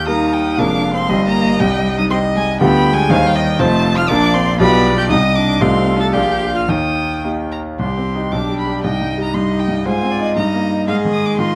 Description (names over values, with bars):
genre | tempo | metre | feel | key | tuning
quick classical-period movement for piano quartet | 118 BPM | 2/4 | rubato | Eb major, C minor from 7.8 s | A4 = 439 Hz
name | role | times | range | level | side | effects
clear violin | melody | 0.0-11.6 s | F5 to A6 | -24 LUFS | equal | none
clear cello | second line | 0.0-11.6 s | G3 to A4 | -23 LUFS | equal | none
clear concert grand piano | accompaniment | 0.0-11.6 s | F1 to Eb5 | -18 LUFS | equal | none
rich violin | second line | 0.1-11.6 s | G4 to Bb5 | -25 LUFS | equal | none
room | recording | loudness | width
light reverb | dark, warm production | -16 LUFS | mono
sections
0.0-7.8 A section; 7.8-11.6 B section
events
none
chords
0.0 Eb; 0.6 Bb7/F; 1.1 Eb/G; 1.6 Cm; 2.6 G7/D; 3.1 Cm/Eb; 3.6 F7; 4.1 Bb; 4.6 G7/B; 5.1 Cm; 5.6 F7/C; 6.1 Bb7; 6.7 Eb; 7.8 Cm; 8.3 G/B; 8.8 Cm; 9.9 Ab; 10.4 Eb/G; 10.9 Ab5